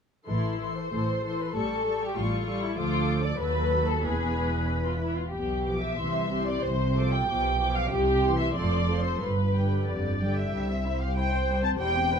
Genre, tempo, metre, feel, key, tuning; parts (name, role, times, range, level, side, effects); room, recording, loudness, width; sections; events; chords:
quick classical-period movement for string orchestra; 89-99 BPM; 2/4; rubato; A minor, C major from 5.3 s; A4 = 440 Hz
muted studio violin section; melody; 0.3-12.2 s; D5 to D6; -34 LUFS; left 2 dB
muted studio violin section; second line; 0.3-12.2 s; G3 to G5; -30 LUFS; left 1 dB
muted studio viola section; accompaniment; 0.3-12.2 s; D3 to C5; -33 LUFS; left 2 dB
muted studio cello section; bass; 0.3-12.2 s; C2 to C3; -32 LUFS; right 2 dB
muted studio double bass section; bass; 0.3-12.2 s; E1 to D#2; -30 LUFS; right 1 dB
light reverb; close, detailed microphones; -25 LUFS; side -7 dB against mid
0.3-10.5 A section; 10.5-12.2 B section
0.3 Am; 1.6 A7; 2.8 Dm; 3.4 B7/D#; 4.0 E; 5.3 G7/B; 6.0 C; 6.6 Dm7/C; 7.3 G7/B; 7.9 C; 8.6 F; 9.2 G; 10.5 C